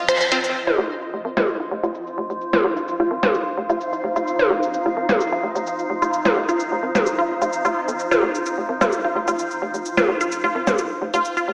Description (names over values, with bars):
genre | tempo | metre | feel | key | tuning
minimal techno | 129 BPM | 4/4 | straight | unclear | A4 = 438 Hz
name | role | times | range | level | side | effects
granular cloud pad | texture | 0.0-11.5 s | F4 to F5 | -29 LUFS | equal | built-in reverb
resonant blip pluck | riff | 0.1-11.4 s | F4 to C5 | -26 LUFS | equal | phaser, tape echo
minimal click drum kit | drums | 0.1-11.5 s | cabasa, finger snaps, hi-hat | -31 LUFS | equal | overdrive, low-pass filter on hats, low-pass filter on perc, low-pass filter on snare
swarming drone | texture | 2.3-11.5 s | Eb4 | -34 LUFS | equal | built-in reverb, lush chorus
electronic toms and percussion blips | percussion | 0.7-10.8 s | none | -24 LUFS | equal | analog delay
hollow knocking FM bass | bass | 0.8-11.5 s | F1 to Ab1 | -29 LUFS | equal | high-pass filter
room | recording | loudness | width
wet lush hall reverb, RT60 2.2 s | dreamy mix soaked in reverb, small speaker sound | -21 LUFS | mono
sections
0.6-11.5 A section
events
break 0.0-0.6; band accent 0.1; filter sweep on drum 0.6-11.5; filter sweep on synth arpeggio sound 0.6-11.5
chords
0.0 F5